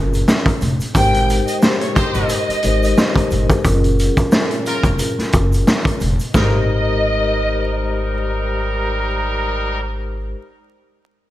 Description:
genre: hip hop, boom-bap hip-hop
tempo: 89 BPM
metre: 4/4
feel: swing 55% on 16ths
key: Ab major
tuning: A4 = 438 Hz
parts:
  - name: vibraphone with soft mallets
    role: accompaniment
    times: 0.0-10.3 s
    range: Gb3 to C5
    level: -22 LUFS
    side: left 2 dB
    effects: high-pass filter, low-pass filter
  - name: upright bass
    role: bass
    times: 0.0-10.3 s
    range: F1 to Ab1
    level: -20 LUFS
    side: equal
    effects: none
  - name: raw garage drum kit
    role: drums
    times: 0.1-6.5 s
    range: hi-hat, kick drum, snare drum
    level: -17 LUFS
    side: equal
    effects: none
  - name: tube shaker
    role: percussion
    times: 0.1-6.7 s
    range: none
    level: -39 LUFS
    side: right 4 dB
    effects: none
  - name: dark symphonic violin section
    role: melody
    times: 0.9-8.3 s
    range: C5 to G5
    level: -21 LUFS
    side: equal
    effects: high-pass filter, low-pass filter
  - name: clear trumpet section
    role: stabs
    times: 2.0-9.8 s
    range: G3 to C5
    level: -25 LUFS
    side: equal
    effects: high-pass filter, low-pass filter, ping-pong delay
room: light reverb, studio ambience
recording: bright 1980s-style digital production, vinyl crackle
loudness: -15 LUFS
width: side -14 dB against mid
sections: 0.0-6.3 A section; 6.3-9.0 B section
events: none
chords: 0.0 Gbmaj9; 0.9 Abmaj9; 3.6 Gbmaj9; 6.3 Abmaj9

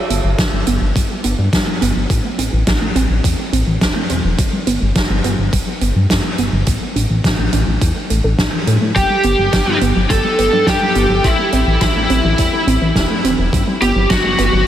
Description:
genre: synthwave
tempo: 105 BPM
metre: 4/4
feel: straight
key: G major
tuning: A4 = 440 Hz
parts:
  - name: warbly dusty pluck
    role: arpeggios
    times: 0.1-14.6 s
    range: E3 to A4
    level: -21 LUFS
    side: right 2 dB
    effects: chorus, tape echo
  - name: chorused synth bass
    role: bass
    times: 0.1-14.6 s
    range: E1 to A2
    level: -18 LUFS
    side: equal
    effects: sidechain pumping
  - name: soft-mallet drum kit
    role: drums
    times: 0.1-14.5 s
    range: hi-hat, snare drum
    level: -20 LUFS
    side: equal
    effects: studio ambience
  - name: electronic kick drum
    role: drums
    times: 0.4-14.2 s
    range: none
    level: -20 LUFS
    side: equal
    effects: overdrive, studio ambience
  - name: lead guitar through a small cranked amp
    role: melody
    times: 9.0-14.7 s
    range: E4 to A4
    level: -15 LUFS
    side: equal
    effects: overdrive, analog chorus, diffuse ambient delay
room: moderate huge ambient reverb, RT60 7.0 s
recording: dreamy mix soaked in reverb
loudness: -13 LUFS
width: side -11 dB against mid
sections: 0.0-14.7 A section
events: filter sweep on synth arpeggio sound 0.0-14.7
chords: 0.0 Gmaj7; 2.1 Am; 4.4 Gmaj7; 6.7 Dsus2/A; 9.0 Gmaj7; 11.2 Am; 13.5 Gmaj7

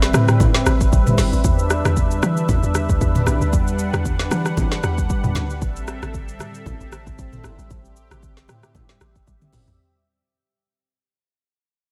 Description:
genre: amapiano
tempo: 115 BPM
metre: 4/4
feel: swing 55% on 16ths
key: unclear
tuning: A4 = 440 Hz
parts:
  - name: warm analog pad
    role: sustained chords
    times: 0.0-9.8 s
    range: G3 to F#5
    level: -28 LUFS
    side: equal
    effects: chorus, sidechain pumping
  - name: deep log drum bass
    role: bass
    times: 0.0-9.8 s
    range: G1 to E3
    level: -24 LUFS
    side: equal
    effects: none
  - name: afro-pop drum kit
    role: drums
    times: 0.0-9.8 s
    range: hi-hat, kick drum, rim click, shaker, snare drum, toms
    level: -23 LUFS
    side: equal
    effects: none
  - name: congas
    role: percussion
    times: 0.1-9.7 s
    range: none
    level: -30 LUFS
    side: equal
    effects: none
room: little or no reverb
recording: none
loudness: -19 LUFS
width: mono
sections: 0.0-9.8 A section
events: drop 0.0-9.8; fade-out 0.0-9.8; drum fill 9.3-9.8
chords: 0.0 Am7; 1.4 Em7; 5.6 Am7

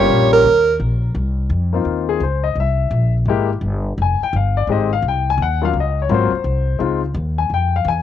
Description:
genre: jazz, small-group swing and bop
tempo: 170 BPM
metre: 4/4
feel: swing 65% on 8ths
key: unclear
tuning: A4 = 441 Hz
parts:
  - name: breathy tenor saxophone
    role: second line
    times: 0.0-0.8 s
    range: Bb4 to Db5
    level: -13 LUFS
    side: right 5 dB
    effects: cassette tape
  - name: warm upright piano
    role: accompaniment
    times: 0.0-8.0 s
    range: Gb3 to Ab5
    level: -19 LUFS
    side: left 9 dB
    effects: cassette tape
  - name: upright bass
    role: bass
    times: 0.0-8.0 s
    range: F1 to F2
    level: -18 LUFS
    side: left 1 dB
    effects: none
room: moderate spring reverb, RT60 1.7 s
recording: home recording on cassette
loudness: -15 LUFS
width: side -10 dB against mid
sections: 0.0-1.1 A section; 1.1-8.0 A section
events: tenor saxophone solo 0.0-1.1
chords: 0.4 Eb5; 1.1 Bbmadd9/C; 2.6 C7b13; 4.0 Fm7; 5.4 Ebm9; 6.1 Ab13; 6.8 Dbmaj7

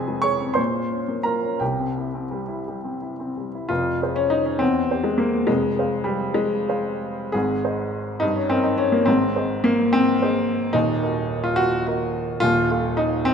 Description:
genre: classical, romantic character piece for solo piano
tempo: 55-75 BPM (dotted quarters)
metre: 6/8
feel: rubato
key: F minor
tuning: A4 = 440 Hz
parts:
  - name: warm baby grand piano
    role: solo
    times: 0.0-13.3 s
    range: Eb1 to Db6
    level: -20 LUFS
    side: equal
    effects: none
room: moderate concert hall reverb, RT60 2.1 s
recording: none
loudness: -20 LUFS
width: side -7 dB against mid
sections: 0.0-3.7 A section; 3.7-13.3 B section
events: none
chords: 0.0 Fm; 0.6 Bbm; 1.6 C; 3.7 Fm; 4.6 C/E; 5.5 Fm; 7.3 Ab; 8.2 Eb/G; 9.1 Ab; 10.8 Ebm; 12.4 F7/Eb

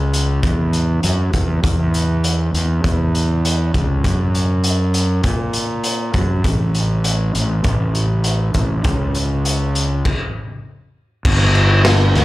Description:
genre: quiet-loud alternative rock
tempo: 100 BPM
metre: 4/4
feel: straight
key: unclear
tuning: A4 = 439 Hz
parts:
  - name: fuzz fingered electric bass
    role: bass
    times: 0.0-12.2 s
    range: G1 to A#2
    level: -16 LUFS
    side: equal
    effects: overdrive
  - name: raw garage drum kit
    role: drums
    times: 0.1-12.2 s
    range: crash cymbal, hi-hat, kick drum, snare drum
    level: -20 LUFS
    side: equal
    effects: none
room: little or no reverb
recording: live gig heard through the venue's PA, club reverb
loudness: -15 LUFS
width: side -17 dB against mid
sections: 0.0-11.3 A section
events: stop 10.1-11.3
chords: none

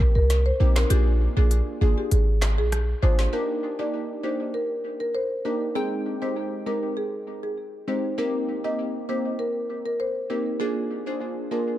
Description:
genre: dancehall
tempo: 99 BPM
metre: 4/4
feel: straight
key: Eb major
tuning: A4 = 443 Hz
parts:
  - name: clean 808-style bass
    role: bass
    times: 0.0-3.3 s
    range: Ab1 to C2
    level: -20 LUFS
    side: equal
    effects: none
  - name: afro-pop drum kit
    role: drums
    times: 0.0-3.3 s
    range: handclaps, hi-hat, kick drum, rim click, snare drum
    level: -27 LUFS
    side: equal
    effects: analog delay
  - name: marimba with soft mallets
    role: melody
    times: 0.2-11.6 s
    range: G4 to Eb5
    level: -28 LUFS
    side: equal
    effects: analog delay
  - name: glassy wavetable pluck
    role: accompaniment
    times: 0.6-11.8 s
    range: Ab3 to G5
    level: -30 LUFS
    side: equal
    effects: chorus, analog delay
room: light reverb, digital ambience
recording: echo-heavy mix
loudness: -22 LUFS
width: side -14 dB against mid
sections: 0.0-3.3 A section; 3.3-11.8 B section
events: kick muted 0.9-3.3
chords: 0.0 Cm7; 0.9 Bb7; 3.3 Ebmaj7; 5.8 Abmaj7; 8.2 Cm7; 10.6 Bb7

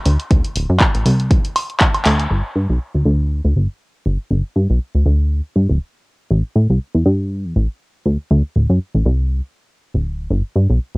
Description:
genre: filtered disco house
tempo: 120 BPM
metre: 4/4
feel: swing 56% on 16ths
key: G major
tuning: A4 = 440 Hz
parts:
  - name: plucky analog bass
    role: bass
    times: 0.1-11.0 s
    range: D1 to A2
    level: -14 LUFS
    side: equal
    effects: tube saturation, sidechain pumping, low-pass filter
  - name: punchy analog drum machine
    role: drums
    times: 0.1-2.3 s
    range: handclaps, hi-hat, woodblock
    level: -19 LUFS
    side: equal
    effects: sidechain pumping on hats, cassette tape, sidechain pumping on perc
  - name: electronic kick drum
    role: drums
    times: 0.3-1.9 s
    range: none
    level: -14 LUFS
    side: equal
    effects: cassette tape
room: little or no reverb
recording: home recording on cassette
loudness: -15 LUFS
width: side -28 dB against mid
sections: 0.0-2.3 A section; 2.3-11.0 B section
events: filter sweep on analog synth bass 0.0-2.3, 2.3-11.0; drum fill 2.1; band accent 2.1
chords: none

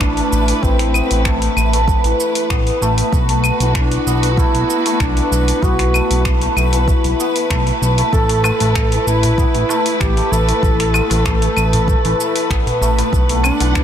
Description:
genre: organic downtempo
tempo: 96 BPM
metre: 4/4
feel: straight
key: unclear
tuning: A4 = 441 Hz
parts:
  - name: mellow duduk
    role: melody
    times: 0.0-13.8 s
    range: C4 to A4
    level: -22 LUFS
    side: right 2 dB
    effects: tape echo
  - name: warm studio string section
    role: sustained chords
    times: 0.0-13.8 s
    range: A3 to F#5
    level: -24 LUFS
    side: right 1 dB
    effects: sidechain pumping
  - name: santur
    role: arpeggios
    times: 0.0-13.8 s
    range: E3 to E4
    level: -20 LUFS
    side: left 2 dB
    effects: ping-pong delay
  - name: smooth synth bass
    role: bass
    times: 0.0-13.8 s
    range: A1 to B1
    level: -17 LUFS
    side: equal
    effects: tube saturation
  - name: deep house drum kit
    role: drums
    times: 0.0-13.8 s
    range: claves, finger snaps, hi-hat, shaker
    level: -23 LUFS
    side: left 1 dB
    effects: overdrive, soft clipping on snare
  - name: electronic kick drum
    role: drums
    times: 0.0-13.8 s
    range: none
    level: -18 LUFS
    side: equal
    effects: overdrive
  - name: darbuka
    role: percussion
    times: 8.4-13.7 s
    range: none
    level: -27 LUFS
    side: equal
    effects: none
room: light reverb, small room ambience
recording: dense, heavily limited modern master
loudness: -13 LUFS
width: side -9 dB against mid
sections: 0.0-13.8 A section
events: none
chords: 0.0 Am; 3.1 Bm7; 8.1 A5; 13.1 Bm7

